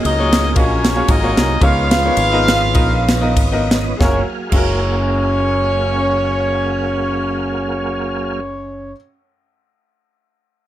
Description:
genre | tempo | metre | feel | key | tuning
uptempo gospel | 90-119 BPM | 4/4 | swing 55% on 8ths | F# major | A4 = 441 Hz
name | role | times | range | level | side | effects
clear upright piano | accompaniment | 0.0-9.0 s | F#2 to D#5 | -22 LUFS | left 2 dB | none
tonewheel organ | sustained chords | 0.0-8.4 s | E#3 to A#5 | -24 LUFS | right 3 dB | fast rotary speaker, chorus vibrato
fingered electric bass | bass | 0.0-8.9 s | F#1 to C#2 | -20 LUFS | equal | none
mellow horn section | melody | 0.1-8.9 s | C#4 to E#5 | -18 LUFS | equal | none
crisp fusion drum kit | drums | 0.1-4.7 s | crash cymbal, kick drum, ride cymbal, snare drum | -17 LUFS | equal | none
room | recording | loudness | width
light reverb, small room ambience | none | -14 LUFS | side -12 dB against mid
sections
0.0-4.0 A section; 4.0-9.3 B section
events
slowing down 0.0-4.0; tonewheel organ fill 2.8-4.0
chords
0.0 F#maj9; 1.6 C#13; 4.0 F#maj9

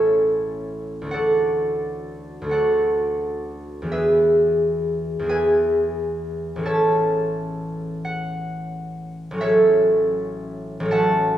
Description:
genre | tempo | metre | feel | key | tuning
classical, solo harp piece | 43 BPM (dotted quarters) | 6/8 | rubato | A major | A4 = 436 Hz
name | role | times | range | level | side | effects
concert harp | solo | 0.0-11.4 s | A1 to A5 | -19 LUFS | equal | none
room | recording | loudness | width
wet recital hall reverb, RT60 1.8 s | heard from further back in the room | -19 LUFS | side -11 dB against mid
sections
0.0-11.4 A section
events
none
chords
0.0 A; 1.1 D; 3.9 E; 6.7 A

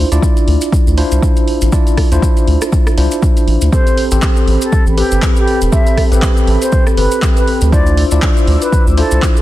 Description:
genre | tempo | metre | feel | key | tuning
deep house | 120 BPM | 4/4 | swing 57% on 16ths | unclear | A4 = 440 Hz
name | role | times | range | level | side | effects
bell-like tine electric piano | stabs | 0.0-9.4 s | C4 to D5 | -17 LUFS | equal | medium stereo tremolo, sidechain pumping, tape echo
round analog bass | bass | 0.0-9.2 s | E1 to D2 | -12 LUFS | equal | sidechain pumping
punchy analog drum machine | drums | 0.1-9.4 s | handclaps, hi-hat, rim click | -23 LUFS | equal | overdrive, vintage 12-bit sampler grit, studio reverb
maracas | percussion | 0.1-9.4 s | none | -28 LUFS | left 2 dB | none
electronic kick drum | drums | 0.2-9.3 s | none | -13 LUFS | equal | overdrive, vintage 12-bit sampler grit, studio reverb
mellow silver concert flute | melody | 3.7-9.4 s | G4 to E5 | -20 LUFS | equal | analog delay
warm analog pad | sustained chords | 3.7-9.4 s | A4 to E6 | -25 LUFS | right 1 dB | chorus, sidechain pumping
room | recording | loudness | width
digital ambience | dense, heavily limited modern master | -10 LUFS | side -15 dB against mid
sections
0.0-9.4 A section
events
none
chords
0.0 Dm9; 3.7 Am9; 7.7 Dm9

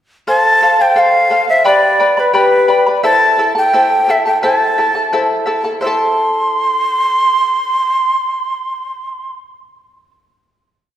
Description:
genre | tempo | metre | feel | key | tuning
andean folk | 87 BPM | 2/4 | straight | A minor | A4 = 439 Hz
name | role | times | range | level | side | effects
breathy bright large quena | melody | 0.3-9.3 s | B4 to C6 | -12 LUFS | equal | none
charango | accompaniment | 0.3-10.1 s | E4 to B5 | -15 LUFS | left 1 dB | none
room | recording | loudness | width
wet scoring stage reverb, RT60 1.8 s | recorded in a church or concert hall | -11 LUFS | side -11 dB against mid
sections
0.3-5.8 A section; 5.8-8.6 final chord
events
none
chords
0.3 F; 1.7 G; 3.0 Am

